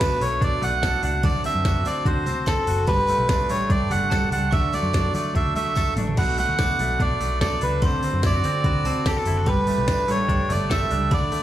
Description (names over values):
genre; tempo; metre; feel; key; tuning
jangly indie pop; 146 BPM; 4/4; straight; unclear; A4 = 440 Hz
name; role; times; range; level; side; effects
melodica; melody; 0.0-11.4 s; A4 to F#5; -24 LUFS; right 1 dB; slapback echo, digital delay
glockenspiel with brass mallets; second line; 0.0-11.4 s; A5 to D6; -38 LUFS; right 2 dB; slapback echo, digital delay
picked steel-string acoustic guitar; accompaniment; 0.0-11.4 s; B2 to D5; -30 LUFS; right 4 dB; slapback echo
direct-recorded clean electric guitar; arpeggios; 0.0-11.4 s; B2 to A4; -30 LUFS; left 4 dB; slapback echo
vintage muted picked electric bass; bass; 0.0-11.4 s; F#1 to D3; -26 LUFS; equal; none
glitchy drum kit; drums; 0.0-11.4 s; crash cymbal, hi-hat, kick drum, snare drum, toms; -24 LUFS; equal; none
tambourine; percussion; 0.0-11.4 s; none; -43 LUFS; left 2 dB; none
room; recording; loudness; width
little or no reverb; live gig heard through the venue's PA, club reverb; -19 LUFS; side -12 dB against mid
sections
0.0-11.4 A section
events
drum fill 5.8-6.2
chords
0.0 Bm7; 1.2 D7; 2.9 Gsus2; 4.5 D; 6.2 Bm7; 7.8 D7; 9.5 Gsus2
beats
0.01 0.42 0.83 | 1.24 1.65 2.06 2.47 | 2.88 3.29 3.71 4.12 | 4.53 4.94 5.35 5.77 | 6.18 6.59 7.00 7.41 | 7.83 8.24 8.65 9.06 | 9.47 9.89 10.30 10.71 | 11.12